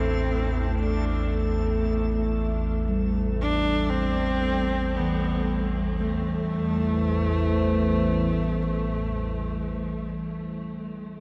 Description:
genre	dark ambient drone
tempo	free time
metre	none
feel	none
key	A minor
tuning	A4 = 440 Hz
part	bright horsehead fiddle	melody	0.0-10.1 s	A3 to D4	-33 LUFS	equal	diffuse ambient delay
part	dark analog pad	sustained chords	0.0-10.6 s	A3 to E5	-33 LUFS	equal	chorus, phaser
part	bronze singing bowl	arpeggios	0.0-10.1 s	E3 to A4	-33 LUFS	equal	diffuse ambient delay
part	deep rumbling drone	drone	0.0-10.1 s	A1 to E2	-30 LUFS	equal	built-in reverb
part	backwards swelling texture	texture	0.0-6.0 s	A3	-41 LUFS	equal	built-in reverb
room	moderate huge ambient reverb, RT60 7.2 s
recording	none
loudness	-26 LUFS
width	mono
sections	0.0-6.0 A section; 6.0-10.1 B section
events	none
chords	0.0 Amadd9

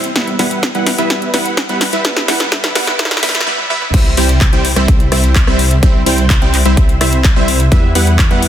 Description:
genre	EDM, festival progressive house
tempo	127 BPM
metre	4/4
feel	straight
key	unclear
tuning	A4 = 438 Hz
part	supersaw stab	riff	0.0-8.5 s	G3 to G5	-15 LUFS	right 1 dB	vintage 12-bit sampler grit, sidechain pumping, digital delay
part	big-room dance drum kit	drums	0.0-8.5 s	crash cymbal, handclaps, hi-hat, rim click, snare drum, toms	-17 LUFS	left 1 dB	studio ambience
part	electronic kick drum	drums	0.2-8.3 s	none	-12 LUFS	equal	high-pass filter on kick, studio ambience
part	detuned saw bass	bass	3.9-8.5 s	C2 to E2	-14 LUFS	equal	sidechain pumping
room	light reverb, digital ambience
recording	dense, heavily limited modern master, high-pass filter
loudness	-10 LUFS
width	side -10 dB against mid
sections	0.0-3.9 A section; 3.9-8.5 B section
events	build-up 0.0-3.9; drum fill 0.0-3.5, 3.5-3.9; filter sweep on supersaw synth 0.0-3.9; filter sweep 0.0-3.9; break 3.5-3.9; drop 3.9-8.5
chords	0.2 Em; 3.9 C; 7.7 Em

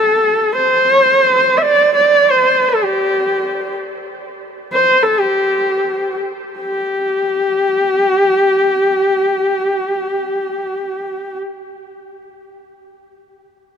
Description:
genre	mongolian traditional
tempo	free time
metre	none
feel	none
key	unclear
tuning	A4 = 436 Hz
part	rich horsehead fiddle	solo	0.0-11.4 s	G4 to E5	-13 LUFS	equal	none
room	moderate huge ambient reverb, RT60 7.0 s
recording	none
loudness	-12 LUFS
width	side -7 dB against mid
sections	0.0-6.6 A section; 6.6-11.5 B section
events	slowing down 2.5-6.6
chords	none

